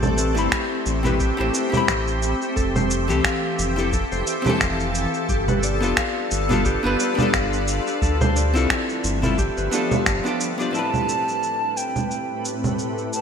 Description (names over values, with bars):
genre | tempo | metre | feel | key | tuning
sunset chillout | 88 BPM | 4/4 | swing 56% on 16ths | A minor | A4 = 441 Hz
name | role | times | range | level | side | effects
shimmering ambient pad | sustained chords | 0.0-13.2 s | A2 to B4 | -26 LUFS | equal | chorus, built-in reverb
Celtic harp | arpeggios | 0.0-12.9 s | G4 to F5 | -28 LUFS | left 4 dB | ping-pong delay
round analog bass | bass | 0.0-10.2 s | F1 to D2 | -24 LUFS | equal | none
electronic congas, shaker and finger snaps | drums | 0.0-13.2 s | none | -24 LUFS | right 2 dB | none
archtop guitar, miked and amplified | accompaniment | 0.3-13.2 s | A2 to B5 | -26 LUFS | left 2 dB | auto-pan, ping-pong delay
electronic kick drum | drums | 0.5-10.2 s | none | -26 LUFS | equal | overdrive
bright baroque flute | melody | 10.7-13.2 s | G5 to A5 | -26 LUFS | right 3 dB | ping-pong delay
room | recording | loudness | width
moderate lush hall reverb, RT60 2.0 s | bright 1980s-style digital production | -19 LUFS | side -7 dB against mid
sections
0.0-10.7 A section; 10.7-13.2 B section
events
filter sweep on ambient pad 10.7-13.2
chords
0.0 Am9; 2.6 Fmaj7; 5.3 G7; 8.0 Dm9; 10.7 Am9